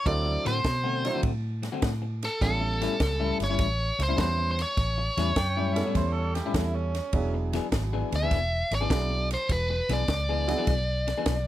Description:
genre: electric blues shuffle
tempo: 102 BPM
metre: 4/4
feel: swing 68% on 8ths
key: A mixolydian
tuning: A4 = 445 Hz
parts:
  - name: biting lead guitar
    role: melody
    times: 0.0-11.5 s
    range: A4 to E5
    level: -29 LUFS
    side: equal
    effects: overdrive
  - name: clear upright piano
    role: accompaniment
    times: 0.1-10.7 s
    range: F#3 to C5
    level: -33 LUFS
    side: right 4 dB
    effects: none
  - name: vintage muted fingered electric bass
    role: bass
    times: 0.1-11.5 s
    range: E1 to B2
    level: -29 LUFS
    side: equal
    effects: none
  - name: compact cocktail drum kit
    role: drums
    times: 0.1-11.4 s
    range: kick drum, ride cymbal, snare drum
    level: -31 LUFS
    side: equal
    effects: none
  - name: electric guitar at the edge of break-up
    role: riff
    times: 0.3-11.3 s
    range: A2 to G#4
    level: -32 LUFS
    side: left 6 dB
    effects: none
  - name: overdriven harmonica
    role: second line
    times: 5.4-7.3 s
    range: C#4 to G5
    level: -35 LUFS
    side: right 5 dB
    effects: none
room: light reverb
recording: none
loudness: -24 LUFS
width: side -13 dB against mid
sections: 0.0-11.5 A section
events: none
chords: 0.1 D7; 2.4 A7; 7.1 E7

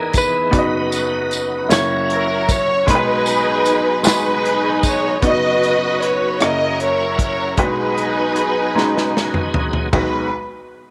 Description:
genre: slow gospel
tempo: 51 BPM (dotted quarters)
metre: 6/8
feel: straight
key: B major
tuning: A4 = 441 Hz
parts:
  - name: direct-recorded clean electric guitar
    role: melody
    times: 0.0-4.8 s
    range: A#4 to C#5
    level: -24 LUFS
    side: equal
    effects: spring reverb
  - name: clear baby grand piano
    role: accompaniment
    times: 0.0-10.3 s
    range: F#1 to A#5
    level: -24 LUFS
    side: equal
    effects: none
  - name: bright tonewheel organ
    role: sustained chords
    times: 0.0-10.3 s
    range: E3 to B4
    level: -28 LUFS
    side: equal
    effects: slow rotary speaker, chorus vibrato
  - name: natural country drum kit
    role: drums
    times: 0.1-10.1 s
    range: hi-hat, kick drum, ride cymbal, rim click, snare drum, toms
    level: -22 LUFS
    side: equal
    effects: none
  - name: tambourine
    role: percussion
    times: 0.2-5.2 s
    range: none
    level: -28 LUFS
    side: equal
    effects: none
  - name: warm studio string section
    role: melody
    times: 2.1-10.3 s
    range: D#4 to D#5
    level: -21 LUFS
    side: equal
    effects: none
room: light reverb, small room ambience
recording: none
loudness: -17 LUFS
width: mono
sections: 0.0-5.2 A section; 5.2-9.9 B section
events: drum fill 8.8-9.9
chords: 0.0 Emaj7; 0.5 B/F#; 1.7 F#7; 2.9 B6; 5.2 B/F#; 6.4 F#7; 7.6 B6

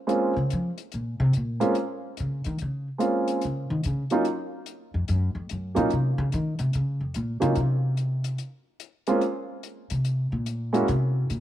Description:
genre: jazz piano trio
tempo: 145 BPM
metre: 4/4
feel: swing 66% on 8ths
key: unclear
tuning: A4 = 440 Hz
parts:
  - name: warm concert grand piano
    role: melody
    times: 0.1-10.9 s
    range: Gb3 to Gb4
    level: -25 LUFS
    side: right 1 dB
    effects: slapback echo
  - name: hi-hat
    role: drums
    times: 0.1-11.4 s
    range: none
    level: -42 LUFS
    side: left 14 dB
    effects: none
  - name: upright bass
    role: bass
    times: 0.4-11.4 s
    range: F2 to F3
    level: -25 LUFS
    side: equal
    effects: none
room: light reverb, small room ambience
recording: 1960s-style stereo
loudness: -24 LUFS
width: side -12 dB against mid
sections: 0.0-11.4 A section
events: upright bass solo 0.0-11.4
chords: 0.0 Bbm7; 3.4 Ebm7; 8.4 N.C.

